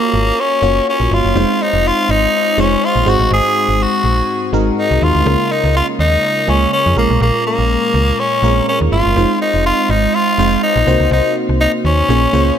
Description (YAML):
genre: 1980s-style pop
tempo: 123 BPM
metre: 4/4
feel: swing 55% on 16ths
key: Bb minor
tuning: A4 = 439 Hz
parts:
  - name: raspy tenor saxophone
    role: melody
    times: 0.0-12.5 s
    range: Bb3 to Ab4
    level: -15 LUFS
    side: left 1 dB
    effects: shimmer reverb, ping-pong delay
  - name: FM electric piano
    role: accompaniment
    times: 0.0-12.6 s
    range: Ab2 to Db5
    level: -17 LUFS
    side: equal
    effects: chorus, phaser, shimmer reverb
  - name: slap-like FM bass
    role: bass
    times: 0.1-12.5 s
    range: F1 to F2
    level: -16 LUFS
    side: equal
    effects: none
room: light reverb, small room ambience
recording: none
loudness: -12 LUFS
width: side -9 dB against mid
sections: 0.0-12.6 A section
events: none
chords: 0.0 Gbmaj7; 1.4 Fm7; 3.1 Ab7; 5.3 Db6; 7.0 Bbm7; 9.2 Fm7; 10.9 Cm7b5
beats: 0.38 0.87 | 1.36 1.85 2.34 2.82 | 3.31 3.80 4.29 4.78 | 5.26 5.75 6.24 6.73 | 7.21 7.70 8.19 8.68 | 9.16 9.65 10.14 10.63 | 11.12 11.60 12.09 12.58